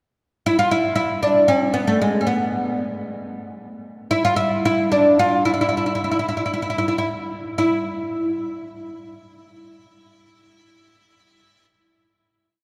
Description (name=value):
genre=Turkish makam ensemble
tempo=182-229 BPM (eighths)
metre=7/8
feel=straight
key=E makam hicaz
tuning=A4 = 440 Hz
part: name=oud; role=solo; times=0.5-11.6 s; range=G#3 to F4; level=-21 LUFS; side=equal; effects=none
room=wet cathedral reverb, RT60 4.6 s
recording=recorded in a church or concert hall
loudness=-20 LUFS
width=mono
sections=0.0-7.6 A section; 7.6-12.2 final note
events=slowing down 3.6-7.6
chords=none